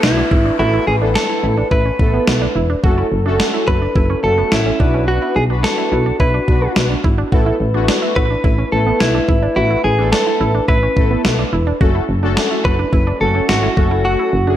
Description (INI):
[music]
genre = synth-pop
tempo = 107 BPM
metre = 4/4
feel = straight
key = unclear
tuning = A4 = 440 Hz
[part]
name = direct-recorded clean electric guitar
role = melody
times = 0.0-14.6 s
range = E4 to B4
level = -19 LUFS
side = equal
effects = slapback echo
[part]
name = analog synth brass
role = accompaniment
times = 0.0-14.6 s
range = A3 to B4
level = -22 LUFS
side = left 2 dB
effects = chorus
[part]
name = mellow French horn section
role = sustained chords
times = 0.0-14.6 s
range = F#3 to B4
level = -25 LUFS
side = left 3 dB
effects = none
[part]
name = wide unison pluck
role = arpeggios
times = 0.0-14.6 s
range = B3 to F#4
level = -24 LUFS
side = right 6 dB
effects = slapback echo
[part]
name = solid FM bass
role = bass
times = 0.0-14.6 s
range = E1 to B1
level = -18 LUFS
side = equal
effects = none
[part]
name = gated 80s digital drum machine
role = drums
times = 0.0-13.9 s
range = kick drum, snare drum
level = -17 LUFS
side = equal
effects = gated reverb, gated reverb snare
[part]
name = downlifter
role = sound effects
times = 0.0-2.8 s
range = none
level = -29 LUFS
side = left 4 dB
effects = none
[sound]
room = light reverb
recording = none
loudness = -13 LUFS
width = side -11 dB against mid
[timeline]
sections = 0.0-14.6 A section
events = none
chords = 0.0 Asus2; 2.8 F#m; 4.8 Bm; 7.3 Asus2; 11.8 F#m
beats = 0.03 | 0.59 1.15 1.72 2.27 | 2.84 3.40 3.96 4.52 | 5.08 5.64 6.20 6.76 | 7.32 7.88 8.44 9.00 | 9.56 10.13 10.69 11.25 | 11.81 12.37 12.93 13.49 | 14.05